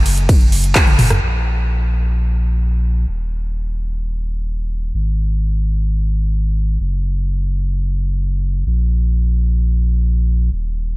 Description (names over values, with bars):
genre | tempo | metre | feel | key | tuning
EDM, festival progressive house | 129 BPM | 4/4 | straight | unclear | A4 = 440 Hz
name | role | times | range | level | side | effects
saturated sub bass | bass | 0.0-11.0 s | Eb1 to Bb1 | -16 LUFS | equal | tube saturation, sidechain pumping
big-room dance drum kit | drums | 0.1-1.2 s | handclaps, hi-hat, ride cymbal, rim click, toms | -19 LUFS | equal | overdrive, low-pass filter on hats, low-pass filter on snare, low-pass filter on cymbals, low-pass filter on toms
electronic kick drum | drums | 0.3-0.8 s | none | -12 LUFS | equal | overdrive
room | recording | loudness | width
little or no reverb | none | -15 LUFS | side -22 dB against mid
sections
0.0-1.2 A section; 1.2-11.0 B section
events
drop 0.0-1.2; band accent 0.8; drum fill 0.9-1.2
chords
none